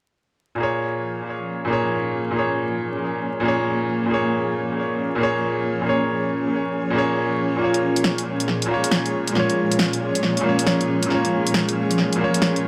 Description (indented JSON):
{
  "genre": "future garage",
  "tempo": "137 BPM",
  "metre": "4/4",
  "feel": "swing 65% on 16ths",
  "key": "Bb minor",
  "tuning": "A4 = 440 Hz",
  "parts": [
    { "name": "bright upright piano", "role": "accompaniment", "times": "0.6-12.7 s", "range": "Bb2 to Db5", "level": "-24 LUFS", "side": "equal", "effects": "vintage 12-bit sampler grit, tape echo" },
    { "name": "granular cloud pad", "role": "sustained chords", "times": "1.1-12.7 s", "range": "Bb2 to Db5", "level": "-26 LUFS", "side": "equal", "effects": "built-in reverb" },
    { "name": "garage drum kit", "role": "drums", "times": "7.7-12.6 s", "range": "hi-hat, snare drum", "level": "-25 LUFS", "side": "equal", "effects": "tape echo" }
  ],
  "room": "moderate plate reverb, RT60 1.4 s, digital ambience",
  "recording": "echo-heavy mix, vinyl crackle",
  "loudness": "-22 LUFS",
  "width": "mono",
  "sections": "0.6-12.7 A section",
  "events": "none",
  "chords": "0.6 Bbm7"
}